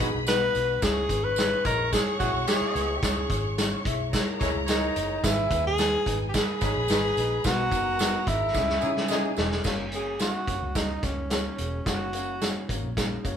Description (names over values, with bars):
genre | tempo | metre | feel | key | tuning
uptempo 1960s-style soul | 109 BPM | 4/4 | straight | C# dorian | A4 = 440 Hz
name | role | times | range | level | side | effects
breathy tenor saxophone | melody | 0.0-12.7 s | C#4 to B4 | -27 LUFS | equal | none
clear horn section | second line | 0.0-9.6 s | D#3 to C#5 | -36 LUFS | right 1 dB | none
dark studio string section | second line | 0.0-9.6 s | G#4 to C#6 | -34 LUFS | left 2 dB | none
dark upright piano | accompaniment | 0.0-13.4 s | G#2 to E5 | -34 LUFS | left 4 dB | none
vintage muted fingered electric bass | bass | 0.0-13.4 s | E1 to C#3 | -33 LUFS | right 1 dB | none
vintage drum kit | drums | 0.0-13.4 s | crash cymbal, hi-hat, kick drum, snare drum | -28 LUFS | equal | none
tambourine | percussion | 0.3-13.4 s | none | -39 LUFS | right 4 dB | none
room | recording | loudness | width
moderate studio reverb, RT60 0.9 s | band playing live in one room | -23 LUFS | side -8 dB against mid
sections
0.0-9.7 A section; 9.7-13.4 B section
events
drum fill 8.5-9.7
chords
0.0 B; 0.8 C#m; 5.2 G#m; 7.4 B; 8.5 C#madd9; 9.7 F#